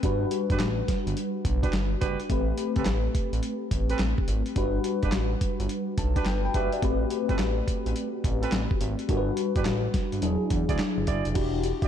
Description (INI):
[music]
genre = R&B, new jack swing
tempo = 106 BPM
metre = 4/4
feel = swing 65% on 16ths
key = A dorian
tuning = A4 = 443 Hz
[part]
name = tine electric piano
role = accompaniment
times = 0.0-11.9 s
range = F#3 to A5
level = -29 LUFS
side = left 3 dB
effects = phaser
[part]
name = smooth synth bass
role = bass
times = 0.0-11.9 s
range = E1 to E2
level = -29 LUFS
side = equal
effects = none
[part]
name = dusty soul sampler-style drum kit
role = drums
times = 0.0-11.9 s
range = crash cymbal, handclaps, hi-hat, kick drum, snare drum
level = -29 LUFS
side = equal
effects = overdrive
[part]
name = warm horn section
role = stabs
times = 0.5-11.9 s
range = C4 to D5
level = -35 LUFS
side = right 7 dB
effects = ping-pong delay
[sound]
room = light reverb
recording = dark, warm production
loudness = -24 LUFS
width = side -9 dB against mid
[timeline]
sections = 0.0-11.4 A section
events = none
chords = 0.0 Gmaj7; 2.3 Am9; 4.6 Gmaj7; 6.8 Am9; 9.1 Gmaj7; 10.2 E9; 11.4 Em9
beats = | 0.03 0.60 1.17 1.73 | 2.30 2.86 3.43 4.00 | 4.56 5.13 5.69 6.26 | 6.83 7.39 7.96 8.52 | 9.09 9.66 10.22 10.79 | 11.35